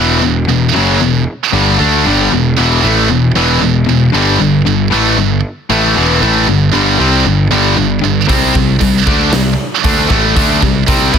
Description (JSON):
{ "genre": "heavy metal", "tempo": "116 BPM", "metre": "4/4", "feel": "straight", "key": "E minor", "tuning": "A4 = 439 Hz", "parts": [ { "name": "distorted electric guitar", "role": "riff", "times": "0.0-11.2 s", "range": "E2 to E4", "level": "-14 LUFS", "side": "left 9 dB", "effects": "overdrive" }, { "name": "heavy high-gain guitar", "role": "riff", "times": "0.0-11.2 s", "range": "E2 to E4", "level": "-13 LUFS", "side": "right 11 dB", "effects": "distortion" }, { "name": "fuzz picked electric bass", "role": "bass", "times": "0.0-11.2 s", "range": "E1 to E2", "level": "-15 LUFS", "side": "right 1 dB", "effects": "overdrive" }, { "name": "big rock drum kit", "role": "drums", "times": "8.3-11.2 s", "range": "hi-hat, kick drum, snare drum", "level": "-15 LUFS", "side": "right 1 dB", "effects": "none" } ], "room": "small room reverb", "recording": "dense, heavily limited modern master", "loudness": "-9 LUFS", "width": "side -7 dB against mid", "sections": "0.0-11.2 A section", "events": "none", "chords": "0.0 Em; 4.1 G5; 8.3 C5", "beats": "0.49 1.01 1.53 | 2.05 2.58 3.10 3.62 | 4.14 4.66 5.18 5.70 | 6.21 6.73 7.25 7.77 | 8.29 8.81 9.33 9.84 | 10.36 10.88" }